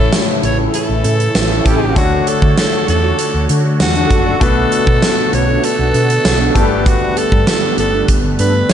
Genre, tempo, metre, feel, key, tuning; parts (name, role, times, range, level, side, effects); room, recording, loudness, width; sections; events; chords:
1980s-style pop; 98 BPM; 4/4; straight; A4 = 440 Hz
raspy alto saxophone; melody; 0.0-8.7 s; F#4 to C#5; -18 LUFS; right 1 dB; ping-pong delay
warm concert grand piano; accompaniment; 0.0-8.7 s; G2 to C#5; -21 LUFS; left 6 dB
phased analog pad; sustained chords; 0.0-8.7 s; C#3 to C#5; -21 LUFS; equal; phaser, chorus
hollow-body short-scale fingered electric bass; bass; 0.0-8.7 s; F#1 to D3; -17 LUFS; equal
huge arena drum kit; drums; 0.1-8.7 s; hi-hat, kick drum, snare drum, tambourine; -16 LUFS; right 1 dB; gated reverb
mellow synth brass; stabs; 0.6-8.5 s; B3 to A4; -21 LUFS; right 1 dB; chorus
light reverb, studio reverb; nothing above 10.3 kHz; -11 LUFS; side -9 dB against mid
0.0-8.7 A section
0.0 A; 2.0 Dmaj7; 4.4 Bm7; 6.6 Gadd9